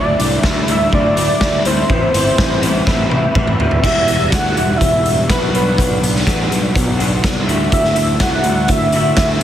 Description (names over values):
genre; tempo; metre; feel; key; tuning
indie rock; 124 BPM; 4/4; straight; D mixolydian; A4 = 440 Hz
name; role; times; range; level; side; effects
wide unison lead; melody; 0.0-9.4 s; B4 to F#5; -18 LUFS; right 1 dB; digital delay
electric guitar through a small old amp; riff; 0.0-9.4 s; E2 to F#4; -19 LUFS; left 1 dB; ensemble chorus
fuzz picked electric bass; bass; 0.0-9.4 s; E1 to D2; -19 LUFS; equal; overdrive
raw garage drum kit; drums; 0.2-9.4 s; crash cymbal, hi-hat, kick drum, snare drum, toms; -17 LUFS; equal; none
room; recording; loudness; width
light reverb; heavily compressed radio sound, multiband compression; -12 LUFS; side -11 dB against mid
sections
0.0-3.8 A section; 3.8-9.4 B section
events
drum fill 2.9-3.8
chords
0.0 Dadd9; 1.9 Amadd9; 3.8 Emadd9; 5.5 Bm; 7.5 Dadd9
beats
0.44 0.93 1.41 | 1.90 2.38 2.87 3.35 | 3.84 4.33 4.81 5.30 | 5.78 6.27 6.75 7.24 | 7.72 8.21 8.69 9.18